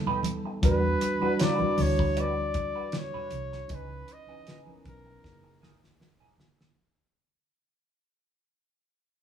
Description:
lush 1970s-style soul; 78 BPM; 4/4; swing 54% on 16ths; A4 = 440 Hz
mellow tine electric piano; accompaniment; 0.0-6.8 s; E3 to B4; -32 LUFS; equal; fast stereo tremolo
electric guitar through a small old amp; riff; 0.1-6.6 s; E3 to B4; -35 LUFS; right 6 dB; wah
congas; percussion; 0.1-6.6 s; -37 LUFS; right 5 dB
damped 70s drum kit; drums; 0.2-6.8 s; hi-hat, kick drum, snare drum; -30 LUFS; equal
vintage muted fingered electric bass; bass; 0.6-5.8 s; F#1 to E2; -31 LUFS; equal
warm flugelhorn; melody; 0.7-6.0 s; A#4 to D#5; -31 LUFS; left 2 dB
moderate large studio reverb, RT60 1.4 s; band playing live in one room; -25 LUFS; side -9 dB against mid
0.0-6.8 A section
fade-out 0.0-6.8; drum fill 5.2-6.8
0.0 B7b13; 0.6 Em9; 3.7 C#m9; 5.2 F#13
| 0.63 1.39 2.16 2.93 | 3.70 4.47 5.24 6.00

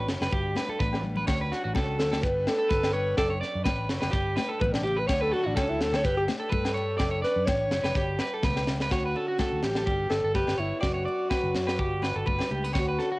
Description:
highlife guitar band; 126 BPM; 4/4; swing 55% on 16ths; A4 = 439 Hz
picked steel-string acoustic guitar; accompaniment; 0.0-13.2 s; F#2 to G4; -40 LUFS; left 1 dB; cassette tape
mellow tonewheel organ; sustained chords; 0.0-8.9 s; F#5 to D6; -48 LUFS; equal
electric guitar at the edge of break-up; arpeggios; 0.0-13.2 s; F#4 to D5; -32 LUFS; right 2 dB; cassette tape
fingered electric bass; bass; 0.0-13.0 s; F#1 to G2; -32 LUFS; equal
tight funk drum kit; drums; 0.1-13.1 s; kick drum, snare drum; -30 LUFS; equal; cassette tape
agogo bells; percussion; 0.2-12.9 s; -40 LUFS; left 4 dB
congas; percussion; 0.3-13.1 s; -38 LUFS; left 4 dB
warm alto saxophone; melody; 2.0-13.2 s; C#4 to C#5; -28 LUFS; equal; cassette tape
light reverb, small room ambience; home recording on cassette; -24 LUFS; side -21 dB against mid
0.0-8.9 A section; 8.9-13.2 B section
alto saxophone solo 0.0-8.9; drum fill 0.7-1.3, 8.4-8.9
0.3 G; 1.3 Dmaj7; 2.2 G; 3.2 Bmadd9/F#; 4.1 G; 5.1 Dmaj7; 6.0 G; 7.0 Bmadd9/F#; 8.0 G; 8.9 Dmaj7; 9.9 G; 10.8 Bmadd9/F#; 11.8 G
0.33 0.80 | 1.28 1.76 2.23 2.71 | 3.19 3.66 4.14 4.62 | 5.09 5.57 6.04 6.52 | 7.00 7.48 7.95 8.43 | 8.91 9.39 9.87 10.35 | 10.83 11.31 11.79 12.27 | 12.75

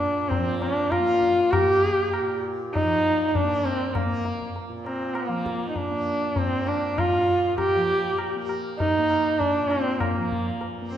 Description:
indian classical, Hindustani; 99 BPM; 5/4; straight; Bb raga bilaval; A4 = 440 Hz
rich sarangi; melody; 0.0-11.0 s; Bb3 to G4; -23 LUFS; equal
tanpura; drone; 0.0-11.0 s; Bb2 to Bb3; -33 LUFS; equal
tabla; percussion; 0.3-10.8 s; -30 LUFS; left 2 dB
wet scoring stage reverb, RT60 1.7 s; minimal, uncompressed stereo recording; -21 LUFS; side -10 dB against mid
0.0-11.0 A section
0.30 0.91 | 1.52 2.13 2.74 3.35 3.96 | 4.56 5.17 5.78 6.38 6.99 | 7.59 8.20 8.80 9.41 10.01 | 10.61

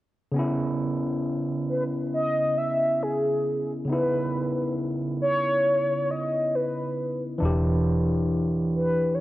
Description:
R&B; 68 BPM; 4/4; swing 60% on 16ths; A4 = 444 Hz
overdriven tine electric piano; accompaniment; 0.3-9.2 s; C#3 to G4; -26 LUFS; equal; auto-pan
mellow horn-like synth lead; melody; 1.7-9.2 s; G#4 to E5; -24 LUFS; equal; chorus
vintage muted fingered electric bass; bass; 7.4-9.2 s; E1; -27 LUFS; equal
wet concert hall reverb, RT60 1.8 s; worn, warbling old tape, cassette tape, warbly pitch drift; -23 LUFS; side -16 dB against mid
0.3-9.2 A section
0.3 C#m9; 7.4 Em7
| 0.35 1.23 2.11 3.00 | 3.88 4.76 5.64 6.52 | 7.41 8.29 9.17

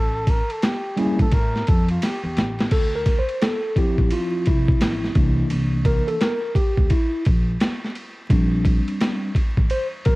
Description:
hip hop, jazz-hop; 86 BPM; 4/4; swing 63% on 16ths; D minor; A4 = 439 Hz
breathy flugelhorn; melody; 0.0-2.7 s; F4 to Bb4; -28 LUFS; equal; cassette tape
upright bass; bass; 0.0-10.2 s; A1 to A2; -24 LUFS; equal
boom bap sampler-style drum kit; drums; 0.3-10.2 s; crash cymbal, hi-hat, kick drum, ride cymbal, snare drum; -20 LUFS; equal; overdrive, vintage 12-bit sampler grit
mellow tine electric piano; accompaniment; 1.0-10.2 s; E3 to C5; -23 LUFS; equal; medium stereo tremolo, cassette tape
little or no reverb; home recording on cassette, vinyl crackle; -18 LUFS; side -21 dB against mid
0.0-2.7 A section; 2.7-10.2 A section
flugelhorn solo 0.0-2.7; drum fill 2.0-2.7; tine electric piano solo 2.7-10.2
0.0 A7(no3); 2.7 Dm9; 5.2 C9; 8.3 Bb6
0.62 1.32 2.02 | 2.72 3.42 4.11 4.81 | 5.51 6.21 6.90 7.60 | 8.30 9.00 9.69

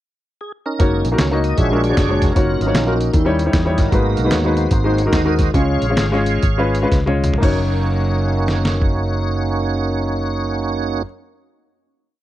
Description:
uptempo gospel; 114-154 BPM; 4/4; swing 64% on 8ths; F# major; A4 = 440 Hz
tonewheel organ; sustained chords; 0.4-11.0 s; F#3 to E#5; -22 LUFS; right 4 dB; fast rotary speaker, chorus vibrato
clear concert grand piano; accompaniment; 0.8-11.0 s; F#2 to D#5; -20 LUFS; left 2 dB
fingered electric bass; bass; 0.8-11.0 s; E#1 to E2; -20 LUFS; equal
trip hop sampler-style drum kit; drums; 0.8-8.9 s; crash cymbal, hi-hat, kick drum, snare drum, toms; -19 LUFS; equal
little or no reverb; dry, close 1970s-style studio recording; -15 LUFS; side -14 dB against mid
0.0-0.8 pickup bar; 0.8-7.4 breakdown; 7.4-11.6 final chord
tonewheel organ solo 0.8-7.4; slowing down 3.9-7.4; drum fill 6.9-7.4
0.0 C#sus2; 0.8 F#6; 1.6 A#7alt; 2.4 D#m7/F#; 3.1 D#7b9; 3.9 G#m7; 4.7 G#7; 5.5 C#; 7.4 F#6
0.02 0.41 | 0.80 1.19 1.58 1.98 | 2.37 2.76 3.15 3.54 | 3.93 4.32 4.72 5.13 | 5.55 5.98 6.44 6.92 | 7.43 7.95 8.48 9.00 | 9.53 10.05 10.58

